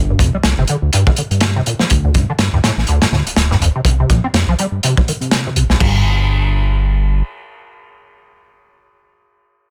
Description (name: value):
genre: breakbeat, breaks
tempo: 123 BPM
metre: 4/4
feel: swing 57% on 16ths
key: unclear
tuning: A4 = 441 Hz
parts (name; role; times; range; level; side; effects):
- fat analog bass; bass; 0.0-7.2 s; D1 to C3; -18 LUFS; equal; tube saturation
- deep acid bass; riff; 0.1-6.0 s; C2 to C4; -20 LUFS; equal; subtle chorus, tape echo
- crunchy breakbeat drum kit; drums; 0.2-5.9 s; crash cymbal, hi-hat, kick drum, snare drum; -19 LUFS; equal; none
room: light reverb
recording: none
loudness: -15 LUFS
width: mono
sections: 0.0-5.8 A section; 5.8-9.7 B section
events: filter sweep on analog synth bass 0.0-5.8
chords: 0.0 G7(no3); 1.9 D7(no3); 3.9 C7(no3); 5.8 N.C.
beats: 0.44 0.93 1.41 | 1.90 2.39 2.88 3.36 | 3.85 4.34 4.83 5.32 | 5.80 6.29 6.78